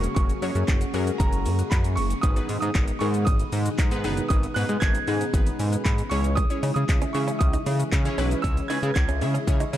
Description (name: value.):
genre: dance-pop.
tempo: 116 BPM.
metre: 4/4.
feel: straight.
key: unclear.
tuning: A4 = 440 Hz.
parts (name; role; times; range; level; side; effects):
bright concert grand piano; melody; 0.0-9.8 s; A#5 to G#6; -32 LUFS; right 4 dB; none.
glassy wavetable pluck; accompaniment; 0.0-9.8 s; B3 to E5; -32 LUFS; left 1 dB; chorus, sidechain pumping.
string machine, violins; sustained chords; 0.0-9.8 s; B2 to D#5; -34 LUFS; equal; ensemble chorus, sidechain pumping.
chorused synth bass; bass; 0.0-9.8 s; F#1 to C#3; -25 LUFS; equal; sidechain pumping.
house drum kit; drums; 0.0-9.8 s; handclaps, hi-hat, kick drum, shaker; -25 LUFS; equal; none.
kalimba; arpeggios; 0.2-9.8 s; D#3 to F#6; -36 LUFS; left 2 dB; sidechain pumping, digital delay.
direct-recorded clean electric guitar; riff; 6.4-9.8 s; C#4 to D#4; -34 LUFS; right 8 dB; lush chorus.
room: light reverb.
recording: dark, warm production.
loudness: -21 LUFS.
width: side -12 dB against mid.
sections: 0.0-9.8 A section.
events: none.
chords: 0.0 F#add9; 2.2 G#m; 6.1 C#m.